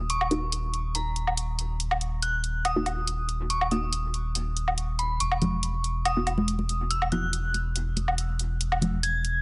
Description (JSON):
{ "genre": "deep dubstep", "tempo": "141 BPM", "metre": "4/4", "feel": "half-time", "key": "Eb phrygian", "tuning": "A4 = 440 Hz", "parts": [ { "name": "dark detuned synth bell", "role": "melody", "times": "0.0-9.4 s", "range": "Bb5 to Ab6", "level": "-34 LUFS", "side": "equal", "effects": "chorus, phaser, dub echo" }, { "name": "soft dub sub bass", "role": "bass", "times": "0.0-9.4 s", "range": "Eb1 to E1", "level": "-32 LUFS", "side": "equal", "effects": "tube saturation" }, { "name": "electronic hi-hat and woodblock", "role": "drums", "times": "0.1-9.3 s", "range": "none", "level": "-31 LUFS", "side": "equal", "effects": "none" }, { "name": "filtered dub chord stab", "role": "stabs", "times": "0.3-7.2 s", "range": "Bb3 to Gb4", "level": "-35 LUFS", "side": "equal", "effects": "phaser, dub echo" }, { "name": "congas", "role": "percussion", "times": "5.4-8.9 s", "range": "none", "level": "-32 LUFS", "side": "equal", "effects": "none" } ], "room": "light reverb", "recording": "nothing above 11.0 kHz", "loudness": "-28 LUFS", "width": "mono", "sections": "0.0-9.4 A section", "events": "none", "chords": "0.0 Ebm; 5.2 Esus2", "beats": "| 0.10 0.52 0.95 1.37 | 1.80 2.22 2.65 3.08 | 3.50 3.93 4.35 4.78 | 5.20 5.63 6.05 6.48 | 6.91 7.33 7.76 8.18 | 8.61 9.03" }